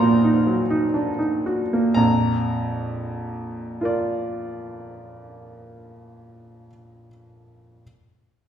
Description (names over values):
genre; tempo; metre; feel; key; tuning
classical, romantic character piece for solo piano; 54-72 BPM; 4/4; rubato; Bb major; A4 = 437 Hz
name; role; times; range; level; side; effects
warm upright piano; solo; 0.0-7.8 s; Bb1 to D6; -20 LUFS; right 1 dB; none
room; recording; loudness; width
wet recital hall reverb, RT60 1.3 s; heard from further back in the room; -20 LUFS; side -9 dB against mid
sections
0.0-2.0 A section; 2.0-5.6 B section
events
slowing down 0.0-2.0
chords
0.0 Ebm/Bb; 2.0 Bb